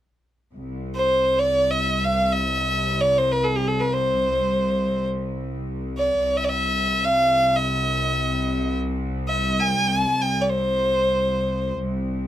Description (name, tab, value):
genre	arabic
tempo	free time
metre	none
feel	none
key	C maqam huzam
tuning	A4 = 441 Hz
part	bright studio cello section	drone	0.5-12.3 s	C2	-25 LUFS	equal	none
part	clear violin	melody	1.0-11.7 s	G4+35c to Ab5+49c	-21 LUFS	equal	none
room	light reverb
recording	close, detailed microphones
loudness	-20 LUFS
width	side -12 dB against mid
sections	0.5-12.3 A section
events	none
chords	none